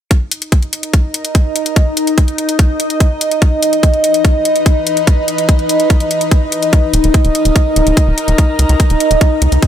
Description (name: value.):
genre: psychedelic trance.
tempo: 145 BPM.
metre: 4/4.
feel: straight.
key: unclear.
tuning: A4 = 440 Hz.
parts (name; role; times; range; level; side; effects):
evolving wavetable pad; sustained chords; 0.8-9.7 s; Eb4 to Eb5; -15 LUFS; equal; phaser, built-in reverb, sidechain pumping.
electronic hi-hat; drums; 0.1-9.7 s; none; -19 LUFS; left 2 dB; overdrive, small room ambience.
electronic kick drum; drums; 0.1-9.7 s; none; -10 LUFS; equal; overdrive, small room ambience.
airy breathy pad; texture; 0.9-9.7 s; E3 to B5; -25 LUFS; left 1 dB; chorus, sidechain pumping.
tight sequencer bass; bass; 6.9-9.6 s; Eb1 to Db2; -13 LUFS; equal; none.
room: moderate huge ambient reverb, RT60 8.0 s.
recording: dreamy mix soaked in reverb.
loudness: -10 LUFS.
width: side -10 dB against mid.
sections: 0.1-9.7 A section.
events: fade-in on analog synth pad 0.1-9.7.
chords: 0.1 Eb5.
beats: | 0.11 0.52 0.94 1.35 | 1.76 2.18 2.59 3.00 | 3.42 3.83 4.25 4.66 | 5.07 5.49 5.90 6.32 | 6.73 7.14 7.56 7.97 | 8.38 8.80 9.21 9.62.